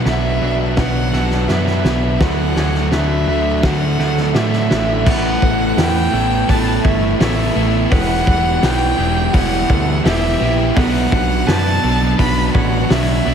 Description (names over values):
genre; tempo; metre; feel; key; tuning
post-rock; 84 BPM; 4/4; straight; unclear; A4 = 440 Hz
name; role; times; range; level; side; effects
warm violin; melody; 0.0-13.3 s; E5 to B5; -21 LUFS; equal; diffuse ambient delay
electric guitar at the edge of break-up; arpeggios; 0.0-13.3 s; E2 to F#4; -26 LUFS; left 4 dB; diffuse ambient delay
twangy electric guitar; arpeggios; 0.0-13.3 s; G4 to D5; -32 LUFS; right 3 dB; diffuse ambient delay
distorted electric guitar; riff; 0.0-13.3 s; B2 to A4; -23 LUFS; left 10 dB; distortion
overdriven semi-hollow guitar; riff; 0.0-13.3 s; B2 to A4; -20 LUFS; right 11 dB; none
growling picked electric bass; bass; 0.0-13.3 s; E1 to A2; -19 LUFS; equal; overdrive
loose indie drum kit; drums; 0.1-13.1 s; crash cymbal, hi-hat, kick drum, snare drum; -20 LUFS; equal; none
room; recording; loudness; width
moderate lush hall reverb, RT60 2.0 s; dreamy mix soaked in reverb; -13 LUFS; side -7 dB against mid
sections
0.0-5.1 A section; 5.1-13.3 B section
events
build-up 0.0-5.1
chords
0.0 Bm; 2.2 D; 5.1 Asus2; 7.9 Em; 10.8 Bm